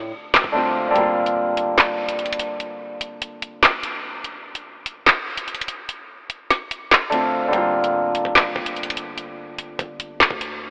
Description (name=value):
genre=hip hop, drill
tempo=146 BPM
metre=4/4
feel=half-time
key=G minor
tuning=A4 = 442 Hz
part: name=Celtic harp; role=accompaniment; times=0.0-4.3, 7.1-10.7 s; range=D3 to F4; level=-24 LUFS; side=equal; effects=low-pass filter
part: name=long sustained 808-style bass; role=bass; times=0.0-1.0, 7.5-10.7 s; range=F1 to A2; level=-41 LUFS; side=equal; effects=none
part: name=drill drum kit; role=drums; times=0.3-10.5 s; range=handclaps, hi-hat, kick drum, snare drum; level=-21 LUFS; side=equal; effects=overdrive
room=moderate huge ambient reverb, RT60 4.1 s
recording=telephone sound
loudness=-21 LUFS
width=mono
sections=0.0-10.7 A section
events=break 0.0-1.0, 2.6-5.9; kick muted 1.0-7.5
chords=0.0 Dm7; 1.0 Gm7; 4.2 Dm7; 7.5 Gm7